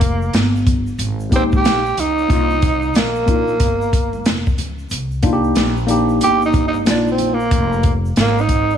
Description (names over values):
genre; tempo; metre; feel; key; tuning
hip hop, jazz-hop; 92 BPM; 4/4; swing 64% on 16ths; C minor; A4 = 441 Hz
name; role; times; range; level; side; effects
growling tenor saxophone; melody; 0.0-8.8 s; Bb3 to G4; -18 LUFS; right 2 dB; slapback echo
upright bass; bass; 0.0-8.8 s; F1 to Db2; -21 LUFS; equal; none
open jazz drum kit; drums; 0.0-8.7 s; hi-hat, kick drum, snare drum; -18 LUFS; equal; none
egg shaker and congas; percussion; 0.0-8.8 s; none; -33 LUFS; right 5 dB; none
tine electric piano; accompaniment; 1.3-7.4 s; Ab3 to G4; -19 LUFS; left 3 dB; overdrive, medium stereo tremolo
room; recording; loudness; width
light reverb, small room ambience; vinyl crackle; -14 LUFS; side -9 dB against mid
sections
0.0-8.8 A section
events
tenor saxophone solo 0.0-8.8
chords
0.0 Fm11; 2.3 Cm11; 7.5 Fm11